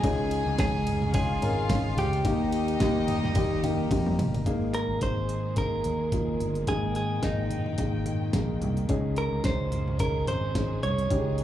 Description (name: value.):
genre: piano-driven pop.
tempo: 108 BPM.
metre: 4/4.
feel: swing 56% on 16ths.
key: unclear.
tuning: A4 = 439 Hz.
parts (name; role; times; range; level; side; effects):
direct-recorded clean electric guitar; melody; 0.0-11.4 s; Eb4 to Db5; -32 LUFS; right 1 dB; slapback echo, tape echo.
warm studio violin section; second line; 0.0-4.4 s; Eb4 to Ab5; -35 LUFS; left 1 dB; slapback echo.
dark upright piano; accompaniment; 0.0-11.4 s; Ab2 to Bb4; -31 LUFS; left 3 dB; slapback echo.
warm studio string section; sustained chords; 0.0-11.4 s; Eb3 to G5; -41 LUFS; left 1 dB; none.
fingered electric bass; bass; 0.0-11.4 s; G1 to F2; -29 LUFS; right 1 dB; none.
pop drum kit; drums; 0.0-11.4 s; hi-hat, kick drum, ride cymbal, snare drum, toms; -30 LUFS; equal; none.
room: light reverb.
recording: live gig heard through the venue's PA, club reverb.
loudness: -24 LUFS.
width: side -12 dB against mid.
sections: 0.0-4.5 A section; 4.5-11.4 B section.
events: drum fill 3.9-4.5.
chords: 0.0 Dbsus2; 2.2 Eb; 4.5 Absus2; 8.9 Dbsus2.